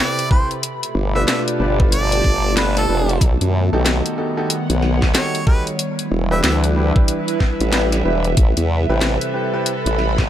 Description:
glitch hop; 93 BPM; 4/4; swing 62% on 16ths; A minor; A4 = 439 Hz
clear harmonica; melody; 0.0-6.6 s; A4 to E5; -25 LUFS; equal; dub echo
warbly tape-like pad; sustained chords; 0.0-10.3 s; B2 to B4; -26 LUFS; right 1 dB; chorus, built-in reverb, sidechain pumping
warm grand piano; stabs; 0.0-9.7 s; C4 to B4; -25 LUFS; equal; sidechain pumping, dub echo
airy breathy pad; texture; 0.0-10.3 s; B3 to B5; -25 LUFS; equal; chorus, sidechain pumping
drum and bass drum kit; drums; 0.2-10.3 s; hi-hat, snare drum; -21 LUFS; left 1 dB
electronic kick drum; drums; 0.3-10.3 s; -15 LUFS; equal
formant-sweep wobble bass; bass; 0.9-10.3 s; E1 to F#2; -18 LUFS; equal; chorus, tube saturation
little or no reverb; -15 LUFS; side -11 dB against mid
0.0-10.3 A section
0.0 Am9; 0.6 G9; 3.2 B7b13; 5.8 Em7; 8.4 Am9

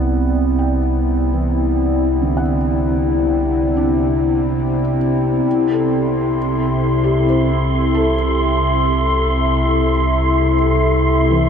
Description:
ambient; free time; C lydian; A4 = 440 Hz
warbly tape-like pad; sustained chords; 0.0-11.5 s; C3 to E5; -17 LUFS; left 1 dB; chorus, built-in reverb
felt-muted upright piano; arpeggios; 0.0-11.5 s; D3 to G5; -26 LUFS; right 1 dB; diffuse ambient delay
warm sub bass; bass; 0.0-11.5 s; C2; -21 LUFS; equal
bowed-like drone; drone; 0.0-11.5 s; C3; -27 LUFS; right 2 dB; built-in reverb
wind-like tuned noise texture; texture; 6.0-11.5 s; C6; -22 LUFS; equal; built-in reverb
wet huge ambient reverb, RT60 7.9 s; dark, warm production; -14 LUFS; side -7 dB against mid
0.0-11.5 A section
fade-in on felt piano 0.0-11.5; fade-in on synth drone 0.0-11.5
0.0 Cmaj7; 5.5 Am/C

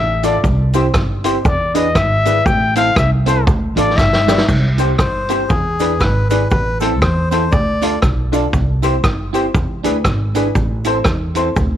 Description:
ska; 119 BPM; 4/4; swing 59% on 8ths; C major; A4 = 440 Hz
breathy trumpet; melody; 0.0-4.5 s; C5 to G5; -17 LUFS; left 3 dB
upright bass; bass; 0.0-11.8 s; G1 to E2; -18 LUFS; equal
electric guitar at the edge of break-up; accompaniment; 0.2-11.5 s; C4 to C5; -23 LUFS; right 13 dB; analog chorus
clear upright piano; stabs; 0.2-11.5 s; C4 to D5; -22 LUFS; left 10 dB
street-band drum kit; drums; 0.2-11.7 s; crash cymbal, hi-hat, kick drum, rim click, snare drum; -18 LUFS; equal
cabasa; percussion; 0.2-11.7 s; -38 LUFS; right 16 dB
melodica; melody; 5.0-8.0 s; G#4 to D5; -21 LUFS; left 2 dB
studio ambience; 1960s-style stereo with parts hard left and right; -13 LUFS; side -11 dB against mid
0.0-4.5 A section; 4.5-11.8 B section
trumpet solo 0.0-4.5; drum fill 4.0-4.5
0.4 C; 1.5 E7; 2.5 Am; 3.5 Dm; 4.0 G; 4.5 C; 5.5 E7; 6.5 Am; 7.5 Dm; 8.5 C; 9.5 E7; 10.6 Am

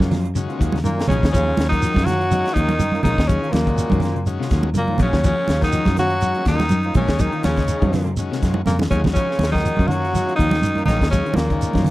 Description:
afrobeat; 122 BPM; 4/4; swing 54% on 16ths; Eb minor; A4 = 438 Hz
raspy tenor saxophone; melody; 0.0-11.9 s; Bb3 to Gb4; -23 LUFS; equal
clear trombone; second line; 0.0-11.9 s; Bb2 to Gb3; -30 LUFS; right 3 dB
raspy baritone saxophone; second line; 0.0-11.9 s; Bb2 to Gb3; -32 LUFS; left 7 dB
combo organ; accompaniment; 0.0-11.9 s; Eb3 to Ab4; -30 LUFS; left 6 dB
clean electric guitar; arpeggios; 0.0-11.9 s; C3 to Ab3; -27 LUFS; left 4 dB
electric guitar at the edge of break-up; stabs; 0.0-11.9 s; Gb3 to F4; -31 LUFS; right 3 dB; analog chorus
fingered electric bass; bass; 0.0-11.9 s; Bb1 to Gb2; -22 LUFS; equal
tight funk drum kit; drums; 0.0-11.9 s; hi-hat, kick drum, snare drum; -22 LUFS; equal
congas; percussion; 0.0-11.9 s; -23 LUFS; right 3 dB
shekere; percussion; 0.1-11.9 s; -26 LUFS; right 2 dB
little or no reverb; dry, close 1970s-style studio recording; -16 LUFS; side -17 dB against mid
0.0-1.3 A section; 1.3-11.9 A section
drum fill 8.7-9.2
0.0 Ebm9

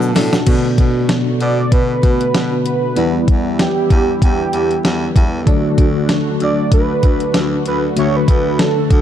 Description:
1980s-style pop; 96 BPM; 4/4; swing 55% on 16ths; A4 = 440 Hz
bell-like tine electric piano; accompaniment; 0.0-9.0 s; B2 to A5; -19 LUFS; left 1 dB; medium stereo tremolo
phased analog pad; sustained chords; 0.0-9.0 s; D3 to F#4; -25 LUFS; right 1 dB; phaser, chorus
clear baritone saxophone; bass; 0.0-9.0 s; D2 to B2; -22 LUFS; equal
tube shaker; percussion; 0.0-0.5 s; -39 LUFS; left 11 dB
funky polysynth comp; stabs; 0.2-9.0 s; D3 to B4; -24 LUFS; left 1 dB; chorus, tape echo
clean 12-bit digital drum machine; drums; 0.2-9.0 s; crash cymbal, hi-hat, kick drum, snare drum; -15 LUFS; equal; overdrive
octave-doubled lead; melody; 1.4-9.0 s; G4 to D5; -19 LUFS; right 3 dB; chorus, tape echo
light reverb; dark, warm production; -12 LUFS; side -10 dB against mid
0.5-9.0 A section
tine electric piano fill 0.0-0.5; drum fill 0.0-0.5; band accent 0.0-0.5
0.5 Bm7; 3.0 Em7; 5.5 D

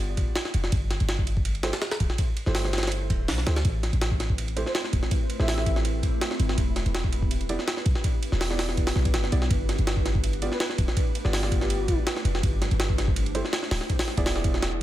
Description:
drum and bass, jungle; 164 BPM; 4/4; swing 53% on 16ths; A minor; A4 = 440 Hz
dark grand piano; stabs; 0.0-14.8 s; A3 to D5; -35 LUFS; right 3 dB; dub echo
warm 808-style bass; bass; 0.0-14.8 s; D1 to D2; -27 LUFS; equal; tube saturation
jungle sampler-style drum kit; drums; 0.2-14.7 s; hi-hat, kick drum, ride cymbal, snare drum; -26 LUFS; equal
breathy flute-like synth lead; melody; 4.7-5.8, 10.5-12.0 s; G4 to E5; -35 LUFS; left 1 dB; ensemble chorus, dub echo
little or no reverb; -23 LUFS; side -14 dB against mid
0.0-14.8 A section
break 14.6
0.0 G7; 0.7 C6; 3.7 Am7; 6.6 Em7; 9.5 G7; 12.4 C6/G; 13.9 E7

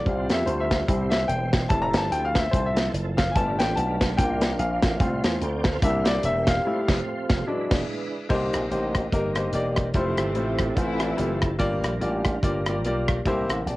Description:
uptempo gospel; 146 BPM; 4/4; swing 58% on 8ths; F major; A4 = 440 Hz
clear baby grand piano; accompaniment; 0.0-13.8 s; G2 to Bb5; -26 LUFS; left 2 dB
mellow French horn section; sustained chords; 0.0-13.8 s; E3 to G4; -38 LUFS; right 2 dB
tonewheel organ; sustained chords; 0.0-13.8 s; E3 to G5; -34 LUFS; right 3 dB; fast rotary speaker, chorus vibrato
slap bass with an envelope filter; bass; 0.1-13.8 s; E1 to F2; -28 LUFS; equal
modern studio drum kit; drums; 0.1-13.8 s; crash cymbal, hi-hat, kick drum, rim click, snare drum; -26 LUFS; equal; cassette tape
breathy tenor saxophone; melody; 9.9-11.4 s; C3 to E3; -29 LUFS; right 3 dB; cassette tape
muted studio string section; melody; 9.9-11.6 s; E3 to E4; -33 LUFS; left 3 dB; cassette tape
light reverb; home recording on cassette; -22 LUFS; side -18 dB against mid
0.0-8.3 A section; 8.3-13.8 B section
grand piano solo 0.0-8.3; band accent 6.7-8.3
0.1 Csus4; 0.9 C; 1.7 Fmaj7; 3.4 G7; 4.2 C9sus4; 5.0 F/C; 5.8 C7; 6.7 Fmaj7; 7.5 E7; 8.3 Cm7; 9.9 Fmaj7; 11.6 Gm7; 13.3 C7

